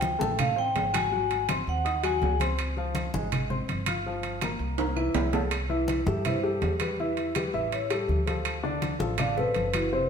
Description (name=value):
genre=Afro-Cuban jazz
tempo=164 BPM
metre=4/4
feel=straight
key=C major from 5.5 s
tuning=A4 = 440 Hz
part: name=vibraphone with medium hard mallets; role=melody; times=0.0-2.4, 6.1-10.1 s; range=B4 to Ab5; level=-29 LUFS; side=left 1 dB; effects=none
part: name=warm baby grand piano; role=accompaniment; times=0.0-10.1 s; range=C3 to Gb6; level=-30 LUFS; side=left 2 dB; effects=none
part: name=upright bass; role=bass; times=0.0-10.1 s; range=F#1 to G2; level=-32 LUFS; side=equal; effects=none
part: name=congas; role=percussion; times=0.0-10.1 s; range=none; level=-33 LUFS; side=left 1 dB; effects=none
part: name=timbales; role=percussion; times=0.0-9.9 s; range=none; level=-33 LUFS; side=right 6 dB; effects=none
part: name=claves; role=percussion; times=0.4-9.9 s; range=none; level=-42 LUFS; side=right 5 dB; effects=none
room=wet stone room reverb, RT60 1.3 s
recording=band playing live in one room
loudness=-25 LUFS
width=side -6 dB against mid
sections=0.0-5.5 A section; 5.5-10.1 B section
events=drum fill 4.8-5.5; vibraphone solo 5.5-10.1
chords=0.0 Dm7; 1.1 Ab7; 2.6 Dbmaj7; 4.1 Gm7; 4.8 C7; 5.5 C6; 7.0 Emadd11; 7.7 A5; 8.5 Dmadd9